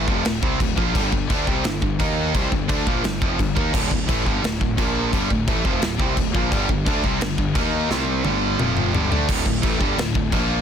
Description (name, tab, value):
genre	heavy metal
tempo	173 BPM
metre	4/4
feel	straight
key	D minor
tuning	A4 = 440 Hz
part	distorted electric guitar	riff	0.0-10.6 s	D2 to Eb4	-25 LUFS	right 14 dB	overdrive
part	heavy high-gain guitar	riff	0.0-10.6 s	D2 to Eb4	-27 LUFS	left 12 dB	distortion
part	raw garage guitar	riff	0.0-10.6 s	D2 to Eb4	-29 LUFS	equal	overdrive
part	fuzz picked electric bass	bass	0.0-10.6 s	D1 to Eb2	-26 LUFS	equal	overdrive
part	big rock drum kit	drums	0.1-10.4 s	china cymbal, crash cymbal, kick drum, snare drum, toms	-23 LUFS	equal	none
room	small room ambience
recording	dense, heavily limited modern master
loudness	-19 LUFS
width	side -8 dB against mid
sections	0.0-9.3 A section; 9.3-10.6 A section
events	drum fill 7.9-9.3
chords	0.0 Dm; 0.9 G5; 2.0 Eb5; 2.3 G5; 3.7 D5; 4.8 Bb5; 5.1 Dm; 6.5 G5; 7.6 Eb5; 7.9 C5; 8.2 G5; 8.6 F5; 8.9 G5; 9.3 D5